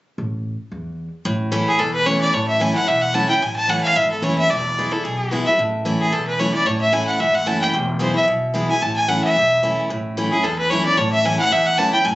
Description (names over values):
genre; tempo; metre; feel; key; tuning
bluegrass; 222 BPM; 4/4; swing 54% on 8ths; A major; A4 = 439 Hz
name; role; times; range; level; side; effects
upright bass; bass; 0.2-12.2 s; E1 to E2; -28 LUFS; equal; none
picked steel-string acoustic guitar; accompaniment; 1.3-12.2 s; E2 to E4; -22 LUFS; equal; none
clear fiddle; melody; 1.7-12.2 s; G#4 to A5; -18 LUFS; equal; plate reverb
room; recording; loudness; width
moderate studio reverb, RT60 0.5 s; recorded on a phone in the room, club reverb, compression, nothing above 7.9 kHz; -16 LUFS; side -17 dB against mid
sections
0.2-1.3 A section; 1.3-9.9 B section; 9.9-12.2 B section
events
none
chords
0.2 A5; 1.3 A; 4.5 E; 5.6 A; 7.7 E; 8.8 A